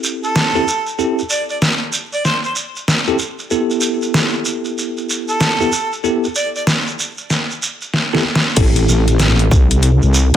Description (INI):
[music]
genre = glitch hop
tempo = 95 BPM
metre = 4/4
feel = swing 62% on 16ths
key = A minor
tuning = A4 = 441 Hz
[part]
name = bell-like tine electric piano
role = stabs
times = 0.0-10.4 s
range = B3 to A4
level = -20 LUFS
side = equal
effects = fast stereo tremolo, vintage 12-bit sampler grit, sidechain pumping, ping-pong delay
[part]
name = shekere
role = percussion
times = 0.0-10.3 s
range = none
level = -23 LUFS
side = right 3 dB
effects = none
[part]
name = mellow harmonica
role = melody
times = 0.2-10.4 s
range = A4 to D5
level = -21 LUFS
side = right 2 dB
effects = ping-pong delay
[part]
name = dubstep drum kit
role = drums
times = 0.4-10.4 s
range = crash cymbal, hi-hat, snare drum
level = -16 LUFS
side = equal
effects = none
[part]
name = wobble bass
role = bass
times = 8.6-10.3 s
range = A1 to C2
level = -13 LUFS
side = equal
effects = chorus, overdrive
[part]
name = electronic kick drum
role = drums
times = 8.6-9.7 s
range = none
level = -14 LUFS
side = equal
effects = none
[sound]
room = light reverb, digital ambience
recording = none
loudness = -14 LUFS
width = side -10 dB against mid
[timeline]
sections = 0.0-8.6 A section; 8.6-10.4 B section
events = drum fill 7.9-8.6; drop 8.6-10.4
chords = 0.0 Am7; 3.5 G69; 8.6 Am7